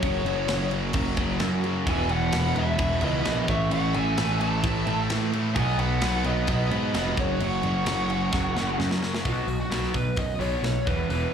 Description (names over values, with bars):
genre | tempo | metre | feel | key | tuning
hard rock | 130 BPM | 4/4 | straight | unclear | A4 = 440 Hz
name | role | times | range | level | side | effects
smooth overdriven lead guitar | melody | 0.0-11.3 s | F#4 to A5 | -30 LUFS | left 1 dB | slapback echo, tape echo
octave-fuzz lead guitar | second line | 0.0-8.8 s | F#4 to E5 | -36 LUFS | right 2 dB | distortion, slapback echo, tape echo
overdriven tonewheel organ | sustained chords | 0.0-9.2 s | E3 to C#5 | -42 LUFS | left 1 dB | none
biting overdriven guitar | riff | 0.0-9.0 s | E2 to C#4 | -34 LUFS | equal | phaser
overdriven semi-hollow guitar | riff | 0.0-11.3 s | E2 to C#4 | -31 LUFS | right 10 dB | slapback echo
tight distorted guitar | riff | 0.0-11.3 s | E2 to C#4 | -34 LUFS | left 12 dB | distortion, slapback echo
fuzz picked electric bass | bass | 0.0-11.2 s | E1 to A2 | -27 LUFS | equal | overdrive
tight metal drum kit | drums | 0.0-11.2 s | crash cymbal, hi-hat, kick drum, snare drum | -31 LUFS | equal | none
room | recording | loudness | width
small room reverb | live gig heard through the venue's PA, club reverb | -23 LUFS | side -8 dB against mid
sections
0.0-9.2 A section; 9.2-11.3 B section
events
drum fill 8.3-9.2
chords
0.0 F#5; 1.9 E5; 3.5 A5; 5.6 B; 7.2 F#5; 9.2 B5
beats
| 0.03 0.49 0.95 1.41 | 1.87 2.33 2.79 3.25 | 3.72 4.18 4.64 5.10 | 5.56 6.02 6.48 6.94 | 7.40 7.86 8.33 8.79 | 9.25 9.71 10.17 10.64 | 11.10